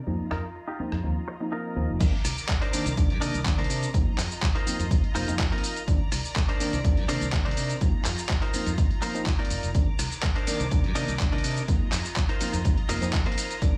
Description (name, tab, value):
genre	filtered disco house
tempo	124 BPM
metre	4/4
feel	straight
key	unclear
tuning	A4 = 440 Hz
part	rich symphonic string section	sustained chords	0.0-13.8 s	Eb3 to D6	-41 LUFS	equal	sidechain pumping, low-pass filter
part	tine electric piano	accompaniment	0.1-13.7 s	Eb3 to Eb4	-36 LUFS	equal	phaser, vintage 12-bit sampler grit, sidechain pumping, low-pass filter
part	modern bright fingered electric bass	bass	0.1-13.7 s	F1 to C3	-33 LUFS	equal	tube saturation, sidechain pumping, low-pass filter
part	direct-recorded clean electric guitar	riff	0.3-13.6 s	D4 to Eb5	-35 LUFS	equal	sidechain pumping, low-pass filter
part	dusty soul sampler-style drum kit	drums	0.3-13.7 s	cabasa, crash cymbal, handclaps, hi-hat, ride cymbal, rim click	-34 LUFS	equal	small room ambience
part	electronic kick drum	drums	2.0-13.7 s	none	-27 LUFS	equal	small room ambience
room	digital ambience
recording	small room ambience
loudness	-26 LUFS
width	mono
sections	0.0-2.0 A section; 2.0-13.8 B section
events	filter sweep 0.0-2.0; drop 2.0-13.8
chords	0.1 F7sus4; 2.0 Cm9; 3.9 F7sus4; 5.9 Cm9; 7.8 F7sus4; 9.7 Cm9; 11.7 F7sus4